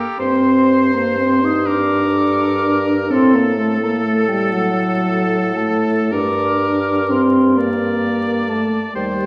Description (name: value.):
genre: classical, slow romantic movement for wind quintet.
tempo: 36-44 BPM (dotted quarters).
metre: 6/8.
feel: rubato.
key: G minor.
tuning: A4 = 440 Hz.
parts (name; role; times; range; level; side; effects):
mellow concert flute; melody; 0.0-9.3 s; F#5 to Eb6; -26 LUFS; equal; none.
bright oboe; second line; 0.0-9.3 s; G4 to D5; -27 LUFS; equal; none.
mellow French horn; accompaniment; 0.0-9.3 s; F#3 to Eb4; -19 LUFS; equal; none.
warm clarinet; accompaniment; 0.0-9.3 s; A4 to C5; -29 LUFS; equal; none.
mellow bassoon; bass; 0.2-9.3 s; Eb2 to A2; -24 LUFS; equal; none.
room: wet recital hall reverb, RT60 1.7 s.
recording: heard from further back in the room, vinyl crackle.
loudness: -17 LUFS.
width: mono.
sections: 0.2-9.3 A section.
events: none.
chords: 0.2 Gm; 3.1 A5; 6.1 Gm.